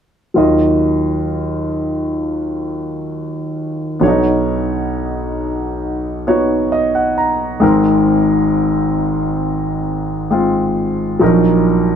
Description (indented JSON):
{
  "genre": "pop",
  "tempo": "66 BPM",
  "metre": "4/4",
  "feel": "straight",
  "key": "Eb minor",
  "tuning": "A4 = 441 Hz",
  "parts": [
    { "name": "warm grand piano", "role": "accompaniment", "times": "0.3-12.0 s", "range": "Ab1 to Bb5", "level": "-14 LUFS", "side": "equal", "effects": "none" }
  ],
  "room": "moderate studio reverb, RT60 0.6 s",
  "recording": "none",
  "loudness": "-14 LUFS",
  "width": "side -8 dB against mid",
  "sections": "0.4-12.0 A section",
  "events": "grand piano fill 5.8-7.6",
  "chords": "0.4 Ebmadd9; 4.0 Badd9; 7.6 Abadd9; 11.2 Ebm/Bb"
}